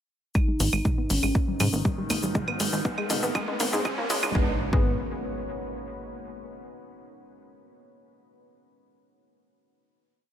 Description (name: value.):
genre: melodic techno.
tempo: 120 BPM.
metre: 4/4.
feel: straight.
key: G# minor.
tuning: A4 = 440 Hz.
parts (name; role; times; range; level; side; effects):
overtone-sweeping drone; drone; 1.2-4.4 s; G#2 to D#3; -40 LUFS; equal; chorus, built-in reverb, phaser, sidechain pumping.
expressive portamento lead; melody; 0.4-4.9 s; B3 to D#4; -33 LUFS; equal; analog chorus, sidechain pumping, tape echo.
deep dark ambient pad; sustained chords; 1.0-4.6 s; D#4; -37 LUFS; left 1 dB; chorus, built-in reverb, sidechain pumping.
analog pluck; arpeggios; 0.4-5.0 s; G3 to B3; -32 LUFS; equal; chorus, sidechain pumping, dub echo.
deep house drum kit; drums; 0.4-4.3 s; claves, hi-hat, shaker, toms; -30 LUFS; equal; none.
electronic kick drum; drums; 0.4-4.8 s; none; -25 LUFS; equal; none.
riser and impact; sound effects; 1.6-6.4 s; none; -35 LUFS; right 1 dB; none.
plucky analog bass; bass; 0.6-5.0 s; G#1 to G#2; -28 LUFS; equal; sidechain pumping.
room: light reverb, digital ambience.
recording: high-pass filter.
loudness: -24 LUFS.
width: side -10 dB against mid.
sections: 0.4-4.4 build; 4.4-6.4 final chord.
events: build-up 0.4-4.4; drum fill 0.4-4.4; filter sweep on synth arpeggio sound 0.4-4.4; filter sweep on ambient pad 0.4-4.4; filter sweep 0.4-4.4; riser 1.6-4.4.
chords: 0.4 G#m; 1.4 D#; 2.4 G#m; 3.4 F#/G#; 4.4 G#m.